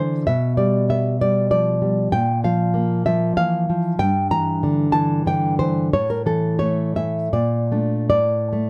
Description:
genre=romantic piece for solo classical guitar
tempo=72-99 BPM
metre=3/4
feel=rubato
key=unclear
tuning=A4 = 440 Hz
part: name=nylon-string guitar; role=solo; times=0.0-8.7 s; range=G2 to Bb5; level=-20 LUFS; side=equal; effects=none
room=light reverb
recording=none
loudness=-20 LUFS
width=mono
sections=0.0-8.7 A section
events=none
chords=0.3 G/B; 2.1 Bb5; 4.0 Em7b5/G; 5.9 A5; 7.3 Bbmaj7; 8.1 N.C.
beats=| 0.26 0.89 1.50 | 2.12 2.75 3.37 | 3.99 4.61 5.25 | 5.92 6.61 7.34 | 8.12

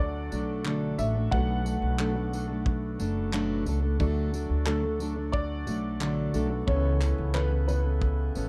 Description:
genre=acoustic pop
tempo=90 BPM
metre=4/4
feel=straight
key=D major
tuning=A4 = 439 Hz
part: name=dark upright piano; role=melody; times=0.0-8.5 s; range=A4 to F#5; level=-37 LUFS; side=equal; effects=none
part: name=dark upright piano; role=accompaniment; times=0.0-8.5 s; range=A3 to D5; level=-46 LUFS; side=equal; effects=none
part: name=fingerpicked plugged-in steel-string acoustic guitar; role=accompaniment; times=0.0-8.5 s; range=B2 to A4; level=-33 LUFS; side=equal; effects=none
part: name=hand-pumped harmonium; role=sustained chords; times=0.0-8.5 s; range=C#3 to F#4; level=-44 LUFS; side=equal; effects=none
part: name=upright bass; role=bass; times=0.0-8.5 s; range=F#1 to D2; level=-31 LUFS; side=equal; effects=none
part: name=loose indie drum kit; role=drums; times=0.3-8.5 s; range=handclaps, kick drum, tambourine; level=-34 LUFS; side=equal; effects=none
room=light reverb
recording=dark, warm production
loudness=-28 LUFS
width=mono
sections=0.0-8.5 A section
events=none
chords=0.0 D; 1.3 Bm7; 4.0 D; 6.7 Aadd9/C#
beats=0.65 | 1.32 1.99 2.66 3.33 | 4.00 4.67 5.34 6.01 | 6.68 7.35 8.02

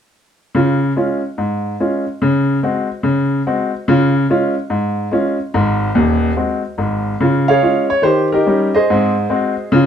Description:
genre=jazz, stride piano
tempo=144 BPM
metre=4/4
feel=swing 66% on 8ths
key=Db major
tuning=A4 = 440 Hz
part: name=clear grand piano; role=solo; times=0.5-9.9 s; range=Eb1 to F5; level=-14 LUFS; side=equal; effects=none
room=moderate studio reverb, RT60 0.8 s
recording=none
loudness=-14 LUFS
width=side -8 dB against mid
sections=0.5-7.2 A section; 7.2-9.9 B section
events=none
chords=0.5 Db; 2.2 Ab7/Db; 3.9 Db; 5.6 Ab7; 7.2 Db; 8.1 Eb7; 8.9 Ab7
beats=| 0.55 0.96 1.38 1.80 | 2.22 2.63 3.05 3.47 | 3.89 4.30 4.72 5.14 | 5.55 5.97 6.39 6.80 | 7.22 7.63 8.05 8.47 | 8.88 9.30 9.71

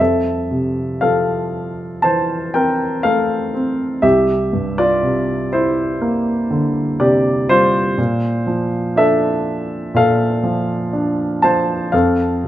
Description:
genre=classical, lyrical solo piano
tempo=61 BPM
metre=4/4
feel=rubato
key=F major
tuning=A4 = 440 Hz
part: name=warm grand piano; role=solo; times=0.0-12.5 s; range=C2 to A5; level=-15 LUFS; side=equal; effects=none
room=moderate recital hall reverb, RT60 1.3 s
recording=none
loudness=-15 LUFS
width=side -13 dB against mid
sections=0.0-12.5 A section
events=none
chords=0.0 Fmaj7; 4.0 C9; 8.0 Bbmaj7; 11.9 F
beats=1.03 2.04 3.05 | 4.04 5.03 6.01 7.00 | 7.98 8.96 9.95 10.93 | 11.93

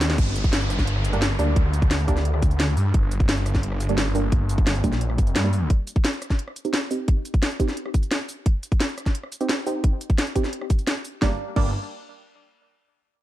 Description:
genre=dark technical drum and bass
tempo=174 BPM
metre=4/4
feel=straight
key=G minor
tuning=A4 = 438 Hz
part: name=snarling distorted saw bass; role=bass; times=0.0-5.7, 11.2-11.7 s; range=G1 to G2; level=-23 LUFS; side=equal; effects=distortion, tube saturation, sidechain pumping
part: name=drum and bass drum kit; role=drums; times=0.0-11.6 s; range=crash cymbal, hi-hat, rim click, shaker, snare drum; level=-26 LUFS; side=equal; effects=none
part: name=electronic kick drum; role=drums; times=0.2-11.6 s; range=none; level=-21 LUFS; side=equal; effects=none
part: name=downlifter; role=sound effects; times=0.2-2.9 s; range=none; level=-34 LUFS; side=equal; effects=none
part: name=filtered dub chord stab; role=stabs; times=1.1-11.7 s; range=G3 to G4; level=-28 LUFS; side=right 3 dB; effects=chorus, ping-pong delay
room=little or no reverb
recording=dark, warm production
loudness=-20 LUFS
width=side -14 dB against mid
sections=0.2-11.2 A section; 11.2-12.6 B section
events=drum fill 0.0; filter sweep on synth stab 0.2-11.2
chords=0.2 Gm; 5.7 Cm; 11.2 Gm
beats=| 0.18 0.53 0.87 1.22 | 1.56 1.91 2.25 2.60 | 2.94 3.29 3.63 3.98 | 4.32 4.67 5.01 5.36 | 5.70 6.04 6.39 6.74 | 7.08 7.42 7.77 8.11 | 8.46 8.80 9.15 9.49 | 9.84 10.18 10.53 10.87 | 11.22 11.56

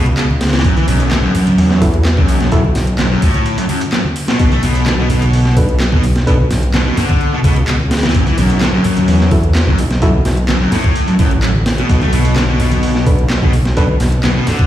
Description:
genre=breakbeat, breaks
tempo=128 BPM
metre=4/4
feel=straight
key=B minor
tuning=A4 = 440 Hz
part: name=fuzz guitar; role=riff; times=0.0-14.7 s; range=F#2 to A3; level=-16 LUFS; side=equal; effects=distortion, vintage 12-bit sampler grit, dub echo
part: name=detuned saw bass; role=bass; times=0.0-14.4 s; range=A1 to E2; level=-15 LUFS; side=equal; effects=none
part: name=house drum kit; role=drums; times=0.1-14.7 s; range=handclaps, hi-hat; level=-27 LUFS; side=right 1 dB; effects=small room ambience
part: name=breakbeat sampler-style drum kit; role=drums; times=0.2-14.7 s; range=hi-hat, kick drum, snare drum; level=-16 LUFS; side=equal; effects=small room ambience
part: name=congas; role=percussion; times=0.3-14.7 s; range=none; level=-22 LUFS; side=equal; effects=none
part: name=tine electric piano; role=stabs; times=1.8-2.6, 5.6-6.4, 9.3-10.1, 13.1-13.9 s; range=D4 to B4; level=-23 LUFS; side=right 1 dB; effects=dub echo
room=digital ambience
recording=played on a big sound system in a bare room, stone room reverb, vinyl crackle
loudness=-11 LUFS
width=side -12 dB against mid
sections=0.0-14.7 A section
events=break 3.5-4.4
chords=0.0 N.C.; 0.6 F#m7/B; 4.4 Bm; 8.1 F#m7/B; 11.9 Bm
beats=0.18 | 0.65 1.11 1.58 2.05 | 2.52 2.99 3.46 3.93 | 4.39 4.86 5.33 5.80 | 6.27 6.74 7.21 7.68 | 8.14 8.61 9.08 9.55 | 10.02 10.49 10.96 11.43 | 11.89 12.36 12.83 13.30 | 13.77 14.24

